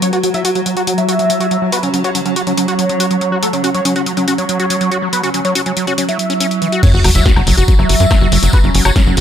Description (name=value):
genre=psychedelic trance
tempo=141 BPM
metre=4/4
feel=straight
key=unclear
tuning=A4 = 440 Hz
part: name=wide unison lead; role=melody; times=0.0-9.1 s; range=C#4 to E5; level=-18 LUFS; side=equal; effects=phaser, sidechain pumping, ping-pong delay
part: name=evolving wavetable pad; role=sustained chords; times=0.0-9.2 s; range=F#3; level=-20 LUFS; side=right 2 dB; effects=phaser, built-in reverb, vintage 12-bit sampler grit, sidechain pumping
part: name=overdriven acid bass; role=riff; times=0.0-9.2 s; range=E3 to F#4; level=-19 LUFS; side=equal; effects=distortion, auto-pan, sidechain pumping, digital delay
part: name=techno drum kit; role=drums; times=0.0-9.2 s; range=crash cymbal, hi-hat, snare drum, woodblock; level=-20 LUFS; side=left 2 dB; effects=overdrive
part: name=electronic kick drum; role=drums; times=6.8-9.0 s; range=none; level=-12 LUFS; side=equal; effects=none
part: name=tambourine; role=percussion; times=6.8-9.1 s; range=none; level=-25 LUFS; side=right 1 dB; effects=none
part: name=sub drop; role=sound effects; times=6.8-8.5 s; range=none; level=-18 LUFS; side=left 1 dB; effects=none
part: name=tight sequencer bass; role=bass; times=6.9-9.2 s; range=F#1 to F#2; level=-13 LUFS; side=equal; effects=tube saturation
room=light reverb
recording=none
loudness=-11 LUFS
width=side -9 dB against mid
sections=0.0-6.8 A section; 6.8-9.2 B section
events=filter sweep on acid bass 0.0-6.8; drop 6.8-9.2; impact 6.8-8.5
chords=0.0 F#5